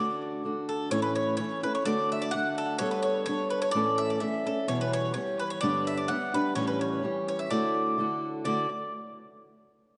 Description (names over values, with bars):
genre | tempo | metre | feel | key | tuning
celtic folk, Celtic polka | 127 BPM | 2/4 | swing 53% on 8ths | D major | A4 = 440 Hz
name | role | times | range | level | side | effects
bowl-back mandolin | melody | 0.0-8.7 s | A4 to F#5 | -33 LUFS | equal | analog delay
fingerpicked steel-string acoustic guitar | accompaniment | 0.0-8.7 s | E2 to A4 | -32 LUFS | equal | none
concert harp | second line | 0.7-9.1 s | A4 to F#5 | -37 LUFS | equal | analog delay
room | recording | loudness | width
wet lush hall reverb, RT60 2.1 s | dreamy mix soaked in reverb, nothing above 10.3 kHz | -29 LUFS | mono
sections
0.9-8.4 A section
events
none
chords
0.0 D; 0.9 A; 1.9 D; 2.8 Gadd9; 3.7 A; 4.7 Em; 5.6 G; 6.6 A7; 7.5 Dadd9